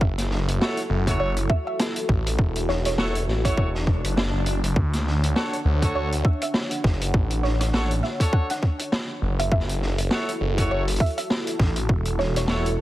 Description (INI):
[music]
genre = glitch hop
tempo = 101 BPM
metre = 4/4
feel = swing 57% on 16ths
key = F# minor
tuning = A4 = 441 Hz
[part]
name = woody wave-folded pluck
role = melody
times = 0.0-12.4 s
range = C#5 to F#5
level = -31 LUFS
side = right 2 dB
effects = analog chorus, ping-pong delay
[part]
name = dark analog pad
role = sustained chords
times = 0.0-12.8 s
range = D4 to F#5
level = -32 LUFS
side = equal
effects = chorus, sidechain pumping
[part]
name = phased detuned saw bass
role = bass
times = 0.0-12.8 s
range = E1 to D2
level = -24 LUFS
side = equal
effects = phaser
[part]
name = electronic kick drum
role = drums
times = 0.0-12.0 s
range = none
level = -21 LUFS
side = equal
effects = overdrive
[part]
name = street-band drum kit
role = drums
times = 0.2-12.8 s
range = hi-hat, snare drum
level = -28 LUFS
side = equal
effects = none
[part]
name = clear horn section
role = stabs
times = 0.6-12.7 s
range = D4 to C#5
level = -32 LUFS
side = equal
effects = sidechain pumping, ping-pong delay
[part]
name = swell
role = sound effects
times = 3.7-4.8 s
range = none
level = -35 LUFS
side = left 2 dB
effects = none
[sound]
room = studio ambience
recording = heavily compressed radio sound, multiband compression, vinyl crackle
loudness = -21 LUFS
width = side -15 dB against mid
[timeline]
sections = 0.0-12.8 A section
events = swell 3.7-4.8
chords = 0.0 F#m7; 4.8 Dmaj7; 9.5 F#m7